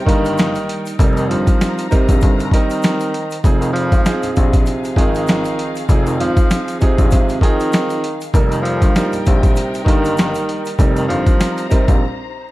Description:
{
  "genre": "hip hop, boom-bap hip-hop",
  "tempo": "98 BPM",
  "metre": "4/4",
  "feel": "swing 56% on 16ths",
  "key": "F minor",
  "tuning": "A4 = 441 Hz",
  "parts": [
    { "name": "breathy tenor saxophone", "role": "melody", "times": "0.0-12.0 s", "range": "C3 to F3", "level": "-21 LUFS", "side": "equal", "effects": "high-pass filter, low-pass filter, tape echo" },
    { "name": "warm studio string section", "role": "sustained chords", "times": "0.0-12.5 s", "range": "Eb4 to Bb5", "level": "-30 LUFS", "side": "left 2 dB", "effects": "high-pass filter, low-pass filter" },
    { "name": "warm upright piano", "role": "accompaniment", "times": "0.1-12.0 s", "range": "F3 to Bb4", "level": "-21 LUFS", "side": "right 3 dB", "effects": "high-pass filter, low-pass filter" },
    { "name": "dark baby grand piano", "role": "bass", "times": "0.1-12.0 s", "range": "F1 to Bb1", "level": "-22 LUFS", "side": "left 2 dB", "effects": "none" },
    { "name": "boom bap sampler-style drum kit", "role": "drums", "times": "0.1-12.0 s", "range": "hi-hat, kick drum, snare drum", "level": "-15 LUFS", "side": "equal", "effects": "overdrive" },
    { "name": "egg shaker", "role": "percussion", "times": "0.2-12.0 s", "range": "none", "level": "-42 LUFS", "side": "left 8 dB", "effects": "none" }
  ],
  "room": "light reverb, small room ambience",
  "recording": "dark, warm production, vinyl crackle",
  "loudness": "-13 LUFS",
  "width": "side -17 dB against mid",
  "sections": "0.0-12.5 A section",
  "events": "break 12.0-12.5",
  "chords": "0.0 Eb; 1.0 Cm7/F; 3.4 Fm7; 8.3 Eb/F; 10.8 Cm7/F",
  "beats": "0.38 | 0.99 1.60 2.22 2.83 | 3.44 4.05 4.67 5.28 | 5.89 6.50 7.11 7.73 | 8.34 8.95 9.56 10.18 | 10.79 11.40 12.01"
}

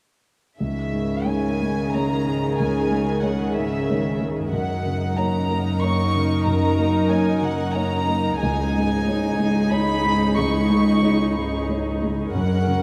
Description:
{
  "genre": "cinematic, emotional film score for orchestra",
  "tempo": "92 BPM",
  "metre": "3/4",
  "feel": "rubato",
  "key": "unclear",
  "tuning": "A4 = 440 Hz",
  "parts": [
    { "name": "warm symphonic violin section", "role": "melody", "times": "0.6-12.8 s", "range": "E5 to C#6", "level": "-30 LUFS", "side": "equal", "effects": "none" },
    { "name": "warm chamber viola section", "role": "accompaniment", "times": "0.6-12.8 s", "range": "D#3 to A#4", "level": "-28 LUFS", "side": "equal", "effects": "none" },
    { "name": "warm grand piano", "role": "accompaniment", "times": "0.6-12.8 s", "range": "C#2 to C#5", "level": "-26 LUFS", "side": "equal", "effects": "none" },
    { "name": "warm symphonic cello section", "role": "bass", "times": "0.6-12.8 s", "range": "C#2 to C#3", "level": "-27 LUFS", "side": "equal", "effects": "none" }
  ],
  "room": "wet cathedral reverb, RT60 6.3 s",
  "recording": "in a vast, echoing space",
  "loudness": "-22 LUFS",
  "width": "mono",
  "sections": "0.6-12.8 A section",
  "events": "none",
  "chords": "0.6 C#madd9; 4.5 F#6; 8.4 C#sus2",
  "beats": "| 0.60 1.27 1.92 | 2.58 3.24 3.89 | 4.54 5.19 5.83 | 6.47 7.12 7.77 | 8.42 9.07 9.72 | 10.37 11.03 11.68 | 12.34"
}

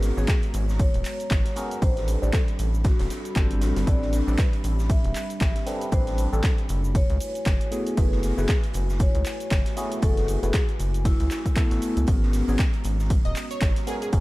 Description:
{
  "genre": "deep house",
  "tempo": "117 BPM",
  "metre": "4/4",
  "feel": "swing 58% on 16ths",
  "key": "unclear",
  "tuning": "A4 = 440 Hz",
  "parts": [
    { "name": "vibraphone with medium mallets", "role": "melody", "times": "0.0-12.0 s", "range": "E4 to E5", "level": "-33 LUFS", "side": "left 2 dB", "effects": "vintage 12-bit sampler grit, tape echo" },
    { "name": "dark analog pad", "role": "sustained chords", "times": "0.0-14.2 s", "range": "G3 to B5", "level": "-36 LUFS", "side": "equal", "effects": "chorus, sidechain pumping" },
    { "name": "overdriven tine electric piano", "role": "stabs", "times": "0.0-14.2 s", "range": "G3 to D5", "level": "-30 LUFS", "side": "left 1 dB", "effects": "phaser, sidechain pumping, tape echo" },
    { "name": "rubbery square bass", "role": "bass", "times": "0.0-14.2 s", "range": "D#1 to C#2", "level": "-25 LUFS", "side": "equal", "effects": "sidechain pumping" },
    { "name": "oversized low-tuned drum kit", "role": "drums", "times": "0.0-14.2 s", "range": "hi-hat, snare drum", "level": "-41 LUFS", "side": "right 1 dB", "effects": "high-pass filter on hats, high-pass filter on snare, high-pass filter on room" },
    { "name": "punchy analog drum machine", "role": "drums", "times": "0.0-14.2 s", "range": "handclaps, hi-hat, shaker", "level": "-34 LUFS", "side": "equal", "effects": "none" },
    { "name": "electronic kick drum", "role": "drums", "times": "0.3-14.2 s", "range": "none", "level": "-23 LUFS", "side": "equal", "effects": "none" },
    { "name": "plucky unison lead", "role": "melody", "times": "13.3-14.1 s", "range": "G#4 to D#5", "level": "-32 LUFS", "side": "right 2 dB", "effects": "analog delay" }
  ],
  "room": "small room reverb",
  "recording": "none",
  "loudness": "-21 LUFS",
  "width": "side -19 dB against mid",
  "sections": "0.0-14.2 A section",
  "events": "none",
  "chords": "0.0 G#m11; 1.8 Am11; 6.9 F#m11; 12.1 G#m11",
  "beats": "0.28 0.80 1.31 | 1.82 2.33 2.85 3.36 | 3.87 4.38 4.90 5.41 | 5.92 6.44 6.95 7.46 | 7.97 8.49 9.00 9.51 | 10.03 10.54 11.05 11.56 | 12.08 12.59 13.10 13.62 | 14.13"
}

